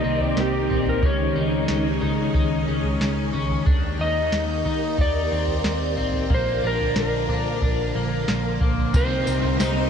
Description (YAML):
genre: dream pop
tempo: 91 BPM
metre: 4/4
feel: straight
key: unclear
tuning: A4 = 441 Hz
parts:
  - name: electric slide guitar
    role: melody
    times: 0.0-9.9 s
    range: G4 to Eb5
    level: -27 LUFS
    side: equal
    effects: tape echo
  - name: phased string machine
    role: sustained chords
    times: 0.0-9.9 s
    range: D3 to Eb5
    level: -26 LUFS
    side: equal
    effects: ensemble chorus, phaser
  - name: electric guitar at the edge of break-up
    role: arpeggios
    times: 0.0-9.9 s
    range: Bb3 to Eb4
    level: -28 LUFS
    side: left 4 dB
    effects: lush chorus, tape echo
  - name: vintage muted picked electric bass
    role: bass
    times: 0.0-9.9 s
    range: A1 to Eb3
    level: -27 LUFS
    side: equal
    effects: none
  - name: soft vintage rhythm box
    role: drums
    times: 0.2-9.8 s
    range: kick drum, snare drum, tambourine, toms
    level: -25 LUFS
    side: equal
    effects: none
  - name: overdriven semi-hollow guitar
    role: accompaniment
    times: 8.9-9.9 s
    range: C3 to Eb4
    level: -27 LUFS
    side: right 2 dB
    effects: tremolo, lush chorus
  - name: shimmering bell with halo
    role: texture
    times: 9.6-9.9 s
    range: C5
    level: -34 LUFS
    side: left 4 dB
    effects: none
room: wet huge ambient reverb, RT60 7.2 s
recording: dreamy mix soaked in reverb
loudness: -20 LUFS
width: side -7 dB against mid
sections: 0.0-8.9 A section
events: none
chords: 0.0 Cm7; 1.0 Dbsus2; 3.7 Ebmaj7; 6.3 Bb; 8.9 Cm7